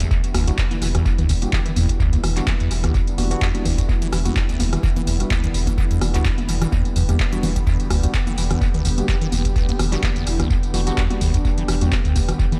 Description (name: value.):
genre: acid house.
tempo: 127 BPM.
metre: 4/4.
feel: swing 55% on 16ths.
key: E minor.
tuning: A4 = 440 Hz.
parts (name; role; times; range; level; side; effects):
warm analog pad; sustained chords; 0.0-12.6 s; D3 to G4; -32 LUFS; equal; subtle chorus, sidechain pumping.
liquid acid bass; riff; 0.0-12.6 s; D2 to G3; -26 LUFS; equal; phaser, tube saturation, sidechain pumping.
saturated sub bass; bass; 0.0-12.3 s; E1; -25 LUFS; equal; sidechain pumping.
booming analog drum machine; drums; 0.0-12.6 s; congas, handclaps, hi-hat, rim click, tambourine; -28 LUFS; equal; dub echo.
electronic kick drum; drums; 0.1-12.5 s; none; -24 LUFS; equal; none.
tine electric piano; stabs; 0.5-11.9 s; G3 to G4; -33 LUFS; equal; dub echo.
breathy flute-like synth lead; melody; 1.4-3.3, 9.0-12.0 s; D4 to G4; -36 LUFS; equal; lush chorus, dub echo.
room: digital ambience.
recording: echo-heavy mix.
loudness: -20 LUFS.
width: mono.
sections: 0.1-12.6 A section.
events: drop 0.1-12.6.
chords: 0.1 Em7.